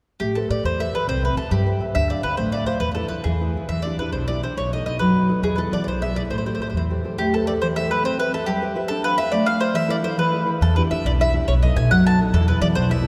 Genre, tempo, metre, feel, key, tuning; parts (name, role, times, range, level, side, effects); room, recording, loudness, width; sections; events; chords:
italian folk, Italian serenade; 139 BPM (dotted quarters); 6/8; rubato; A minor; A4 = 440 Hz
mandolin; melody; 0.2-13.1 s; G4 to A5; -26 LUFS; equal
nylon-string guitar; accompaniment; 0.2-13.1 s; B2 to F5; -26 LUFS; equal
upright bass; bass; 0.2-7.0, 10.6-13.0 s; A1 to E3; -25 LUFS; equal
wet cathedral reverb, RT60 5.3 s; recorded in a church or concert hall; -21 LUFS; mono
0.2-7.2 A section; 7.2-13.1 A section
0.2 Amadd9; 1.1 Cmaj7; 1.9 Dm7; 2.8 Esus4; 3.3 E; 3.7 Em7; 4.6 B7; 5.4 E; 6.3 Am7; 7.2 Amadd9; 8.0 Cmaj7; 8.9 Dm7; 9.7 Esus4; 10.2 E; 10.6 Em7; 11.5 B7; 12.3 E